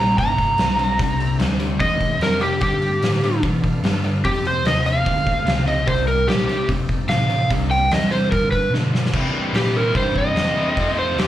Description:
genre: blues rock power trio and southern rock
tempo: 147 BPM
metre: 4/4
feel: straight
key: C mixolydian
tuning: A4 = 438 Hz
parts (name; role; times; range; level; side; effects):
- overdriven slide guitar; melody; 0.0-11.3 s; G4 to Bb5; -21 LUFS; right 1 dB; none
- overdriven tonewheel organ; sustained chords; 0.0-11.3 s; D3 to F5; -34 LUFS; right 2 dB; chorus vibrato, slow rotary speaker
- fuzz guitar; riff; 0.0-11.3 s; F2 to F4; -23 LUFS; left 1 dB; distortion
- overdriven picked electric bass; bass; 0.0-11.3 s; F1 to C3; -24 LUFS; equal; none
- oversized low-tuned drum kit; drums; 0.2-11.3 s; crash cymbal, hi-hat, kick drum, snare drum; -24 LUFS; equal; none
room: little or no reverb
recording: live gig heard through the venue's PA, club reverb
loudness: -17 LUFS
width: side -13 dB against mid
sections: 0.0-9.1 A section; 9.1-11.3 B section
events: drum fill 8.7-9.1; electric slide guitar solo 9.1-11.3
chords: 0.0 C7; 2.6 G7; 4.2 F7; 5.9 C7; 6.7 F7; 7.5 C7; 8.3 G7; 9.1 C7; 10.8 F7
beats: 0.17 0.58 | 0.99 1.39 1.80 2.21 | 2.61 3.02 3.43 3.83 | 4.24 4.65 5.06 5.46 | 5.87 6.28 6.69 7.09 | 7.50 7.91 8.32 8.73 | 9.13 9.54 9.95 10.36 | 10.77 11.18

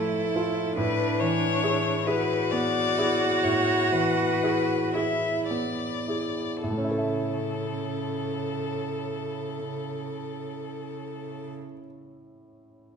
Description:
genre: classical, slow romantic movement for piano trio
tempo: 34-49 BPM (dotted quarters)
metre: 12/8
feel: rubato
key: A major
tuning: A4 = 439 Hz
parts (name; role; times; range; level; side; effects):
- rich violin; melody; 0.0-11.5 s; A4 to E5; -30 LUFS; left 6 dB; none
- warm cello; second line; 0.0-11.5 s; C#3 to F#4; -30 LUFS; right 3 dB; none
- clear concert grand piano; accompaniment; 0.0-13.0 s; A2 to E5; -29 LUFS; right 1 dB; none
room: wet recital hall reverb, RT60 1.5 s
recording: recorded in a church or concert hall, nothing above 10.6 kHz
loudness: -24 LUFS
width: side -6 dB against mid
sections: 0.0-6.6 A section; 6.6-12.9 B section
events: slowing down 0.0-6.6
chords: 0.0 Dm/A (rootless); 0.8 E7/A; 6.6 A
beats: | 0.77 2.06 3.43 4.94 | 6.62 8.19 9.76 11.33

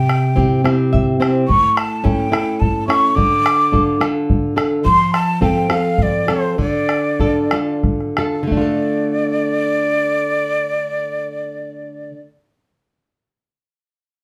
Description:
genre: andean folk, Andean ensemble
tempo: 57-72 BPM (dotted quarters)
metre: 6/8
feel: straight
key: D minor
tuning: A4 = 440 Hz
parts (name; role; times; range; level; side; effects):
- breathy mellow quena; melody; 0.0-12.2 s; C5 to D6; -20 LUFS; equal; none
- flamenco guitar; accompaniment; 0.0-12.3 s; A2 to E5; -21 LUFS; equal; none
- bombo; percussion; 0.1-8.8 s; none; -22 LUFS; equal; none
room: wet studio reverb, RT60 0.5 s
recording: heard from further back in the room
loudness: -17 LUFS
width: mono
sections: 0.0-8.5 A section; 8.5-12.7 B section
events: nylon-string guitar fill 0.6-1.5; slowing down 4.8-8.5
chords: 0.0 C; 1.5 A; 3.2 Dm; 4.8 F; 6.6 Dm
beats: 0.65 | 1.49 2.33 | 3.17 4.01 | 4.85 5.70 | 6.58 7.51 | 8.52 9.57 | 10.62 11.67

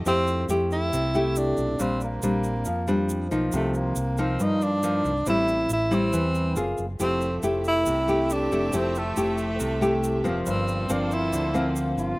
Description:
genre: bossa nova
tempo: 138 BPM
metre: 4/4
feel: straight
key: F major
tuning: A4 = 440 Hz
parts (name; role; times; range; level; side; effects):
- clear studio violin section; sustained chords; 0.0-0.1, 7.0-12.2 s; A3 to E5; -37 LUFS; right 1 dB; none
- fingered electric bass; bass; 0.0-12.2 s; F1 to G2; -29 LUFS; equal; none
- breathy tenor saxophone; melody; 0.1-12.2 s; A3 to F4; -27 LUFS; equal; slapback echo
- nylon-string guitar; accompaniment; 0.1-12.2 s; G2 to Ab4; -25 LUFS; left 1 dB; none
- tube shaker; percussion; 0.1-12.2 s; none; -39 LUFS; right 4 dB; none
room: little or no reverb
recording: recorded outdoors, with no room sound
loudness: -22 LUFS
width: side -22 dB against mid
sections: 0.1-12.2 A section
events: none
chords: 0.1 Fmaj9; 1.8 Bb69; 3.5 Cm11; 5.3 Am7; 6.6 Gbmaj9; 7.0 Fmaj9; 10.5 Gm11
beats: | 0.06 0.50 0.93 1.36 | 1.80 2.23 2.67 3.10 | 3.53 3.97 4.40 4.83 | 5.27 5.70 6.13 6.57 | 7.00 7.43 7.87 8.30 | 8.73 9.17 9.60 10.03 | 10.46 10.90 11.33 11.76

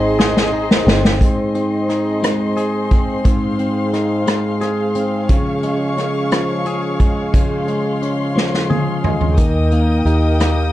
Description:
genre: six-eight pop ballad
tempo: 59 BPM (dotted quarters)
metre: 6/8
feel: straight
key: Ab major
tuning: A4 = 444 Hz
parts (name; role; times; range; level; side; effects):
- direct-recorded clean electric guitar; accompaniment; 0.0-10.7 s; Ab2 to Ab4; -20 LUFS; left 2 dB; spring reverb
- dark chamber string section; sustained chords; 0.0-10.7 s; Ab4 to Eb6; -24 LUFS; equal; none
- fingerpicked plugged-in steel-string acoustic guitar; arpeggios; 0.0-10.7 s; F3 to C5; -24 LUFS; right 4 dB; none
- vintage muted fingered electric bass; bass; 0.0-1.2, 9.4-10.7 s; G1 to Eb2; -17 LUFS; equal; none
- unplugged drum kit; drums; 0.2-10.6 s; hi-hat, kick drum, rim click, snare drum, toms; -16 LUFS; equal; vintage 12-bit sampler grit
room: light reverb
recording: dark, warm production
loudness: -14 LUFS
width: side -14 dB against mid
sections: 0.0-1.2 A section; 1.2-10.7 B section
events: drum fill 0.2-1.2, 8.4-9.4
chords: 0.0 Ab; 5.3 Db; 9.4 Eb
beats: 0.19 | 1.21 2.23 | 3.25 4.27 | 5.29 6.32 | 7.34 8.36 | 9.38 10.40

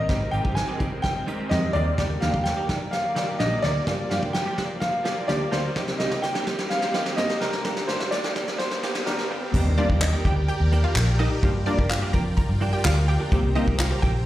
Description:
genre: dance-pop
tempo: 127 BPM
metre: 4/4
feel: straight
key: unclear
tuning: A4 = 440 Hz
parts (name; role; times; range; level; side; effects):
- clear concert grand piano; melody; 0.0-9.3 s; Bb4 to Ab5; -28 LUFS; equal; digital delay
- filtered supersaw swell; sustained chords; 0.0-14.3 s; D3 to Bb5; -33 LUFS; equal; sidechain pumping
- direct-recorded clean electric guitar; riff; 0.0-14.2 s; Eb3 to G4; -33 LUFS; right 3 dB; ensemble chorus
- punchy chord stab; accompaniment; 0.1-14.3 s; G3 to Bb4; -31 LUFS; left 1 dB; chorus, sidechain pumping
- vintage muted fingered electric bass; bass; 0.1-14.3 s; G1 to G2; -24 LUFS; equal; sidechain pumping
- soft brush drum kit; drums; 0.1-14.1 s; crash cymbal, handclaps, hi-hat, kick drum, snare drum; -26 LUFS; equal; none
- riser; sound effects; 5.9-9.5 s; none; -38 LUFS; equal; none
- wide unison pluck; melody; 9.8-14.1 s; D4 to Bb5; -30 LUFS; right 1 dB; sidechain pumping, digital delay
room: moderate digital room reverb, RT60 1.1 s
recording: played on a big sound system in a bare room, stone room reverb, high-pass filter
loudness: -21 LUFS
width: side -14 dB against mid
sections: 0.0-9.5 A section; 9.5-14.3 B section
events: build-up 0.0-9.5; drum fill 0.0-9.5; filter sweep 0.0-9.5; drop 9.5-14.3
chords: 0.1 Abmaj7; 2.0 Ebmaj7; 3.9 Gm7; 5.8 Cm7; 7.7 Gm; 9.5 Ebmaj7; 11.4 Gm7; 13.3 Cm7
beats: | 0.09 0.56 1.04 1.51 | 1.98 2.46 2.93 3.40 | 3.87 4.34 4.82 5.29 | 5.76 6.23 6.71 7.18 | 7.65 8.12 8.60 9.07 | 9.54 10.01 10.49 10.96 | 11.43 11.90 12.38 12.85 | 13.32 13.79

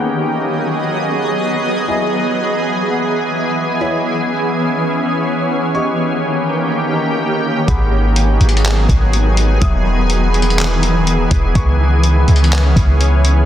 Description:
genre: hip hop, atmospheric cloud-rap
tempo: 124 BPM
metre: 4/4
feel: half-time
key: G# minor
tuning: A4 = 441 Hz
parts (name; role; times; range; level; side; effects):
- concert harp; melody; 0.0-1.1 s; none; barely audible; none; none
- shimmering ambient pad; sustained chords; 0.0-13.5 s; D#3 to D#5; -16 LUFS; equal; chorus, built-in reverb, sidechain pumping
- felt-muted upright piano; texture; 0.0-13.5 s; B3 to D#6; -27 LUFS; left 1 dB; none
- clean 808-style bass; bass; 7.7-13.5 s; E1 to C#2; -13 LUFS; equal; none
- lo-fi sampler-style drum kit; drums; 7.7-13.4 s; handclaps, hi-hat, kick drum; -18 LUFS; equal; none
room: light reverb, digital ambience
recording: dense, heavily limited modern master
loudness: -13 LUFS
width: side -11 dB against mid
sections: 0.0-13.5 A section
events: none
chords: 0.0 G#m7; 1.9 Emaj7; 3.8 C#m7; 5.7 D#7; 7.7 G#m7; 9.6 Emaj7; 11.6 C#m7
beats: 0.42 0.91 1.39 | 1.88 2.36 2.84 3.33 | 3.81 4.29 4.78 5.26 | 5.75 6.23 6.71 7.20 | 7.68 8.16 8.65 9.13 | 9.62 10.10 10.58 11.07 | 11.55 12.04 12.52 13.00

